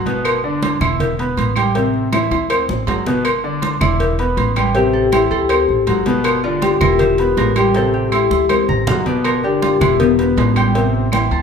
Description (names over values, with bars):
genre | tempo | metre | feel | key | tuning
latin, salsa | 160 BPM | 4/4 | straight | G major | A4 = 440 Hz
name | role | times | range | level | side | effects
clear grand piano | accompaniment | 0.0-11.4 s | B2 to C6 | -20 LUFS | equal | none
upright bass | bass | 0.0-11.4 s | E1 to D2 | -21 LUFS | right 1 dB | none
congas | percussion | 0.1-11.4 s | none | -23 LUFS | right 1 dB | none
cowbell and bongos | percussion | 0.1-11.3 s | none | -24 LUFS | left 3 dB | none
claves | percussion | 0.2-11.3 s | none | -29 LUFS | left 6 dB | none
agogo bells and timbales | percussion | 0.3-11.4 s | none | -22 LUFS | right 7 dB | none
Celtic harp | melody | 3.8-11.4 s | B3 to Bb5 | -17 LUFS | left 4 dB | none
room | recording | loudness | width
wet large studio reverb, RT60 1.1 s | band playing live in one room | -14 LUFS | side -6 dB against mid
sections
0.0-3.3 A section; 3.3-11.4 B section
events
drum fill 2.1-3.3, 8.1-9.3; harp solo 3.3-11.4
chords
0.3 G; 1.0 Em; 1.8 Am; 2.5 D7; 3.3 G5; 4.0 Em7; 4.8 Am; 5.5 D7; 6.2 G; 7.0 Em; 7.8 Am; 8.5 D7; 9.3 G; 10.0 Em; 10.8 Am7